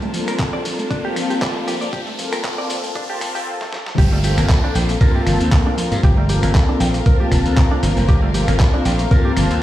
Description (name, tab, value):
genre	nu-disco, nu disco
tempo	117 BPM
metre	4/4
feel	swing 54% on 16ths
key	G minor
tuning	A4 = 440 Hz
part	rich studio string section	sustained chords	0.0-9.6 s	G3 to A5	-30 LUFS	left 3 dB	sidechain pumping
part	analog pluck	arpeggios	0.0-9.5 s	F3 to C4	-27 LUFS	right 3 dB	chorus, sidechain pumping, dub echo
part	dusty soul sampler-style drum kit	drums	0.0-9.6 s	crash cymbal, finger snaps, handclaps, hi-hat, snare drum, tambourine	-26 LUFS	equal	overdrive
part	riser and downlifter	sound effects	0.0-8.1 s	none	-32 LUFS	equal	none
part	warm analog pad	accompaniment	0.1-9.6 s	Bb3 to A5	-23 LUFS	left 1 dB	chorus, dub echo
part	direct-recorded clean electric guitar	riff	0.3-9.3 s	G3 to G5	-28 LUFS	right 1 dB	wide subtle chorus, dub echo
part	electronic kick drum	drums	0.4-9.2 s	none	-15 LUFS	equal	none
part	glassy slap bass	bass	4.0-9.6 s	F1 to G2	-18 LUFS	equal	none
room	light reverb, digital ambience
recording	played on a big sound system in a bare room, stone room reverb, high-pass filter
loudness	-15 LUFS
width	side -14 dB against mid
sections	0.0-4.0 A section; 4.0-9.6 B section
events	build-up 0.0-4.0; riser 0.0-3.5; filter sweep on analog synth pad 0.0-4.0; filter sweep on synth arpeggio sound 0.0-4.0; drum fill 3.6-4.0; drop 4.0-9.6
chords	0.0 Gm11; 3.7 Fsus4; 4.0 Gm11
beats	0.39 0.91 1.42 | 1.93 2.44 2.96 3.47 | 3.98 4.50 5.01 5.52 | 6.04 6.55 7.06 7.57 | 8.09 8.60 9.11 9.62